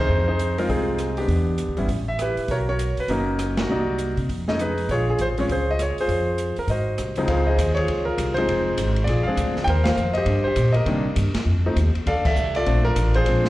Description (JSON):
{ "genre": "jazz piano trio", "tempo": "200 BPM", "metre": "4/4", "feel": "swing 62% on 8ths", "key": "unclear", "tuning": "A4 = 443 Hz", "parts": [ { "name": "clear grand piano", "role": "melody", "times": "0.0-13.5 s", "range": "Db2 to G5", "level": "-23 LUFS", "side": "equal", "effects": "slapback echo" }, { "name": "upright bass", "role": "bass", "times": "0.0-13.5 s", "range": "F1 to C3", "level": "-23 LUFS", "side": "equal", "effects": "none" }, { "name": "open jazz drum kit", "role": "drums", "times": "0.4-13.5 s", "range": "crash cymbal, hi-hat, kick drum, ride cymbal, rim click, snare drum", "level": "-30 LUFS", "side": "equal", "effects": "none" } ], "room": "light reverb", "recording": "live gig heard through the venue's PA, recital hall reverb", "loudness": "-20 LUFS", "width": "side -16 dB against mid", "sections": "0.0-7.3 A section; 7.3-13.5 B section", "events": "band accent 3.5, 9.8, 12.2", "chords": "0.1 Fm7; 1.3 Em7; 1.9 Asus2; 2.5 Bmaj9; 3.7 Cm7b5; 4.3 Fm7; 4.9 Bbm9; 6.7 Ab; 7.3 Dbmaj7; 8.5 Fm7; 9.1 Bb7; 9.7 Eb6; 10.9 Cm7; 11.5 F7(no3); 12.1 Bbmaj7", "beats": "| 0.09 0.39 0.69 0.99 | 1.29 1.59 1.89 2.19 | 2.49 2.79 3.09 3.39 | 3.69 3.99 4.29 4.59 | 4.89 5.19 5.49 5.79 | 6.09 6.39 6.69 6.99 | 7.28 7.58 7.88 8.18 | 8.48 8.78 9.08 9.38 | 9.68 9.97 10.27 10.57 | 10.87 11.17 11.47 11.77 | 12.07 12.37 12.67 12.97 | 13.27" }